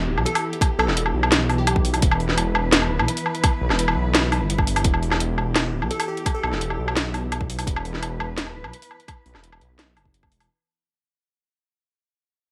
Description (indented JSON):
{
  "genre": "half-time drum and bass",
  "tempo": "170 BPM",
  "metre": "4/4",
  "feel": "half-time",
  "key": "E minor",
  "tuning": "A4 = 438 Hz",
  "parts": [
    { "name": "dark studio cello section", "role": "sustained chords", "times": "0.0-10.5 s", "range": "E3 to B4", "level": "-33 LUFS", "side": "equal", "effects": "sidechain pumping" },
    { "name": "dark detuned saw bass", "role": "bass", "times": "0.0-10.5 s", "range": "D1 to B1", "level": "-27 LUFS", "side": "equal", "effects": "none" },
    { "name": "drum and bass drum kit", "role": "drums", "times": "0.2-10.5 s", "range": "hi-hat, snare drum, woodblock", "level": "-24 LUFS", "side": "equal", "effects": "none" },
    { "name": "glassy wavetable pluck", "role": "melody", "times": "0.3-1.7, 5.9-6.8 s", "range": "G4 to A4", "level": "-33 LUFS", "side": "equal", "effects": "chorus, delay" },
    { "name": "electronic kick drum", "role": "drums", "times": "0.6-10.3 s", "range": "none", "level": "-24 LUFS", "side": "equal", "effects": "none" }
  ],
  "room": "moderate plate reverb, RT60 1.0 s",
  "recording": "bright 1980s-style digital production",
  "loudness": "-22 LUFS",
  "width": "mono",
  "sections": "0.0-10.5 A section",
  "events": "drop 0.0-10.5; fade-out 4.8-10.5",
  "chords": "0.0 Em",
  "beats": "0.26 | 0.61 0.97 1.32 1.67 | 2.02 2.38 2.73 3.08 | 3.44 3.79 4.14 4.50 | 4.85 5.20 5.55 5.91 | 6.26 6.61 6.97 7.32 | 7.67 8.03 8.38 8.73 | 9.08 9.44 9.79 10.14"
}